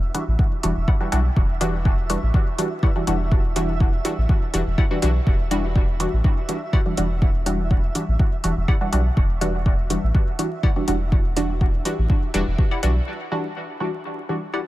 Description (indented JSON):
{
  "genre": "dub techno",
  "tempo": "123 BPM",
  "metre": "4/4",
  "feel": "straight",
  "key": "E minor",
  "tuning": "A4 = 440 Hz",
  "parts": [
    { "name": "soft dub sub bass", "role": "bass", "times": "0.0-13.0 s", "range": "E1 to B1", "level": "-23 LUFS", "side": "equal", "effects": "sidechain pumping" },
    { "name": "flickering grainy texture", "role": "texture", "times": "0.0-13.1 s", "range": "E5", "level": "-37 LUFS", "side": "right 4 dB", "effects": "built-in reverb, sidechain pumping" },
    { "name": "filtered dub chord stab", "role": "stabs", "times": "0.1-14.4 s", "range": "E3 to F#4", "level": "-25 LUFS", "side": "equal", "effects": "chorus, phaser, sidechain pumping, dub echo" },
    { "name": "electronic hi-hat", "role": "drums", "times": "0.1-12.9 s", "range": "none", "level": "-29 LUFS", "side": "equal", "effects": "none" },
    { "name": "electronic kick drum", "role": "drums", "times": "0.4-12.7 s", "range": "none", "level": "-19 LUFS", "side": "equal", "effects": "none" },
    { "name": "wavetable chord stab", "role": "riff", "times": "0.9-14.6 s", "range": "E4 to F#5", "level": "-33 LUFS", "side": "left 3 dB", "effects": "phaser, sidechain pumping, dub echo" }
  ],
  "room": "little or no reverb",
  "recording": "vinyl crackle",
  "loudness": "-19 LUFS",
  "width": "side -16 dB against mid",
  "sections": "0.0-13.1 A section; 13.1-14.7 B section",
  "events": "none",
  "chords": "0.0 Em9",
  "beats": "0.39 0.88 | 1.36 1.85 2.34 2.83 | 3.32 3.80 4.29 4.78 | 5.27 5.75 6.24 6.73 | 7.22 7.71 8.19 8.68 | 9.17 9.66 10.15 10.63 | 11.12 11.61 12.10 12.59 | 13.07 13.56 14.05 14.54"
}